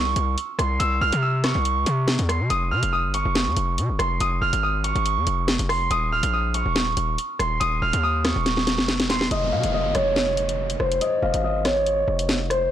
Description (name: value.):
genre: hip hop, drill.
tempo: 141 BPM.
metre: 4/4.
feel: half-time.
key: F minor.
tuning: A4 = 440 Hz.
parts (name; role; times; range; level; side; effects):
concert harp; melody; 0.0-12.7 s; C5 to F6; -23 LUFS; right 2 dB; low-pass filter, digital delay.
distorted 808-style bass; bass; 0.0-12.7 s; Eb1 to C3; -25 LUFS; left 1 dB; distortion.
drill drum kit; drums; 0.2-12.6 s; hi-hat, rim click, snare drum; -25 LUFS; left 1 dB; vintage 12-bit sampler grit.
downlifter; sound effects; 9.3-12.7 s; none; -33 LUFS; left 2 dB; none.
room: little or no reverb.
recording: blown-out, overdriven recording, overdrive.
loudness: -20 LUFS.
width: side -10 dB against mid.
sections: 0.0-9.3 A section; 9.3-12.7 B section.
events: drum fill 8.5-9.3; filter sweep on harp 9.3-12.7.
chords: 0.0 C; 2.5 Fm; 5.9 Eb5; 9.3 Fm.